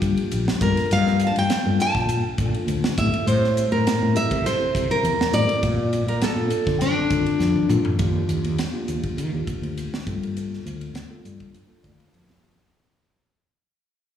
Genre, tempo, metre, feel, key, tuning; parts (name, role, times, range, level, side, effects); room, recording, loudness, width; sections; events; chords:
electric jazz fusion; 102 BPM; 4/4; straight; Eb lydian; A4 = 443 Hz
nylon-string guitar; melody; 0.0-7.7 s; D4 to A5; -23 LUFS; equal; slapback echo, tape echo
mellow tine electric piano; accompaniment; 0.0-12.7 s; Bb3 to A5; -30 LUFS; left 1 dB; fast stereo tremolo, slapback echo
fretless electric bass; bass; 0.0-12.6 s; Bb1 to Eb3; -23 LUFS; left 1 dB
crisp fusion drum kit; drums; 0.0-12.7 s; hi-hat, kick drum, ride cymbal, snare drum, toms; -27 LUFS; equal
light reverb; live gig heard through the venue's PA, recital hall reverb, studio reverb; -19 LUFS; side -9 dB against mid
0.0-8.0 A section; 8.0-12.7 B section
drum fill 7.4-8.0; fade-out 8.0-12.7; tine electric piano fill 11.5-12.7
0.0 Ebmaj9 (rootless); 0.6 Gm9; 3.0 Am7; 5.6 Bbmaj7; 8.0 Ebmaj9; 10.1 Gm9